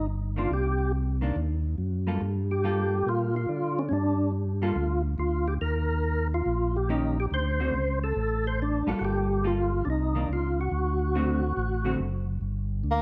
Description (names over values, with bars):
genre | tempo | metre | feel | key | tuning
jazz | 141 BPM | 4/4 | swing 65% on 8ths | G minor | A4 = 439 Hz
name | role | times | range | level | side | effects
percussive tonewheel organ | melody | 0.0-12.0 s | C#4 to C5 | -31 LUFS | equal | slow rotary speaker, chorus vibrato
tonewheel organ | bass | 0.0-13.0 s | F#1 to D3 | -30 LUFS | equal | overdrive, slow rotary speaker
vintage hollow-body jazz guitar | accompaniment | 0.4-12.0 s | D3 to A4 | -35 LUFS | equal | none
mellow tenor saxophone | melody | 12.9-13.0 s | Bb3 | -27 LUFS | equal | none
room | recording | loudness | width
moderate large studio reverb, RT60 1.4 s | none | -28 LUFS | mono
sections
0.0-12.4 A section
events
break 12.0-12.4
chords
0.0 Cm7; 2.2 Gm9; 5.6 Eb7; 7.3 D7(no3); 9.0 Gm9; 9.9 Cm9; 10.7 D7; 12.4 G5